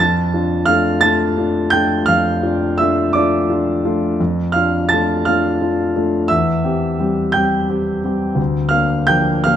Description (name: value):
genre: classical, romantic nocturne for solo piano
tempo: 57 BPM (dotted quarters)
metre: 12/8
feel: rubato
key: D minor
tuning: A4 = 439 Hz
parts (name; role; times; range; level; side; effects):
- warm concert grand piano; solo; 0.0-9.6 s; D2 to A6; -14 LUFS; equal; none
room: light reverb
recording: close, detailed microphones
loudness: -14 LUFS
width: side -10 dB against mid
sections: 0.0-9.6 A section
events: none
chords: 0.0 Dm/F; 6.3 C/E; 8.4 Bb/D